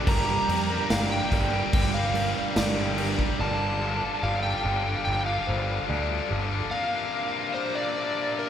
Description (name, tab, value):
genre	post-rock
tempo	72 BPM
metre	4/4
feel	straight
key	G minor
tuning	A4 = 441 Hz
part	hand-pumped harmonium	sustained chords	0.0-8.5 s	G2 to G4	-38 LUFS	left 2 dB	none
part	felt-muted upright piano	arpeggios	0.0-6.7 s	A4 to F5	-37 LUFS	right 2 dB	none
part	distorted electric guitar	riff	0.0-3.4 s	G3 to Bb4	-31 LUFS	right 6 dB	distortion
part	overdriven electric guitar	riff	0.0-8.5 s	G3 to D5	-30 LUFS	left 5 dB	spring reverb
part	overdriven slide guitar	melody	0.1-8.5 s	Bb4 to Bb5	-29 LUFS	equal	none
part	fuzz picked electric bass	bass	0.1-6.6 s	G1 to F2	-30 LUFS	equal	overdrive
part	big rock drum kit	drums	0.1-3.4 s	crash cymbal, kick drum, snare drum	-28 LUFS	equal	none
room	wet concert hall reverb, RT60 2.0 s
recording	recorded in a church or concert hall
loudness	-24 LUFS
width	side -9 dB against mid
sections	0.0-8.5 A section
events	none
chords	0.1 Gm; 3.4 Dm/G; 6.7 Bbadd9/G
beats	| 0.06 0.90 1.73 2.56 | 3.39 4.22 5.05 5.89 | 6.72 7.55 8.38